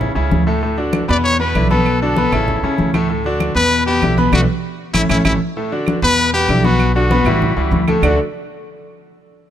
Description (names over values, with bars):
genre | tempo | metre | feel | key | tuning
latin, salsa | 194 BPM | 4/4 | straight | D major | A4 = 438 Hz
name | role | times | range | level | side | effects
bright concert grand piano | accompaniment | 0.0-8.2 s | A2 to D5 | -18 LUFS | left 1 dB | none
upright bass | bass | 0.0-8.2 s | A1 to E2 | -19 LUFS | right 1 dB | none
congas | percussion | 0.0-8.1 s | none | -20 LUFS | equal | none
claves | percussion | 0.9-8.1 s | none | -25 LUFS | right 8 dB | none
bright trumpet | melody | 1.1-8.2 s | E4 to D5 | -19 LUFS | left 2 dB | none
room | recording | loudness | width
light reverb | close, detailed microphones | -13 LUFS | side -10 dB against mid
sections
0.0-5.6 A section; 5.6-8.0 B section; 8.0-9.3 C section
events
band accent 4.3-5.6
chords
0.0 A; 0.6 D; 1.2 E5; 1.9 Bm7; 2.5 A; 3.1 D; 3.7 Em7; 4.3 Bm7; 4.9 A; 5.6 D; 6.2 Em7; 6.8 Bm7; 7.4 A7; 8.0 D5